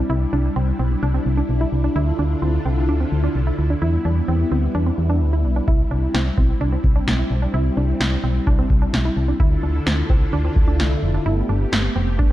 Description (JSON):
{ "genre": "synth-pop", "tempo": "129 BPM", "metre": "4/4", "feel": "straight", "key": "unclear", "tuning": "A4 = 440 Hz", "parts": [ { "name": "string machine, violas", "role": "sustained chords", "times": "0.0-12.3 s", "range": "D3 to A4", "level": "-25 LUFS", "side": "left 1 dB", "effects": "ensemble chorus" }, { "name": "wide unison pluck", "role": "arpeggios", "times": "0.0-12.3 s", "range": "C4 to E4", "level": "-27 LUFS", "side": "right 2 dB", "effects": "analog delay" }, { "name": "solid FM bass", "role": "bass", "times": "0.0-12.3 s", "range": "F1 to E2", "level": "-20 LUFS", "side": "equal", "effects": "none" }, { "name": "electro analog drum machine", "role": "drums", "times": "5.7-12.3 s", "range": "kick drum, snare drum", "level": "-19 LUFS", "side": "equal", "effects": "none" } ], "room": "light reverb, digital ambience", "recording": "dark, warm production", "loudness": "-17 LUFS", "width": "side -14 dB against mid", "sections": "0.0-12.3 A section", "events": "none", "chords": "0.0 C; 2.0 Dmadd9; 3.8 Em; 9.4 Dmadd9; 11.3 Gadd9", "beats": "| 0.10 0.56 1.03 1.49 | 1.96 2.42 2.89 3.35 | 3.82 4.28 4.75 5.21 | 5.68 6.14 6.61 7.07 | 7.54 8.00 8.47 8.93 | 9.40 9.87 10.33 10.79 | 11.26 11.72 12.19" }